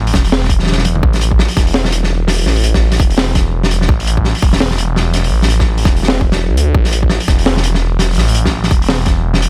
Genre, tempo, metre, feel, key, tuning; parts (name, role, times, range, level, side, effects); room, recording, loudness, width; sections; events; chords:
half-time drum and bass; 168 BPM; 4/4; swing 59% on 16ths, half-time; A4 = 440 Hz
phased detuned saw bass; bass; 0.0-9.5 s; E1 to D2; -17 LUFS; equal; phaser
crunchy breakbeat drum kit; drums; 0.1-9.5 s; hi-hat, snare drum, toms; -18 LUFS; equal
electronic kick drum; drums; 0.1-9.2 s; -16 LUFS; equal
little or no reverb; -13 LUFS; mono
0.0-9.5 A section
drum fill 0.9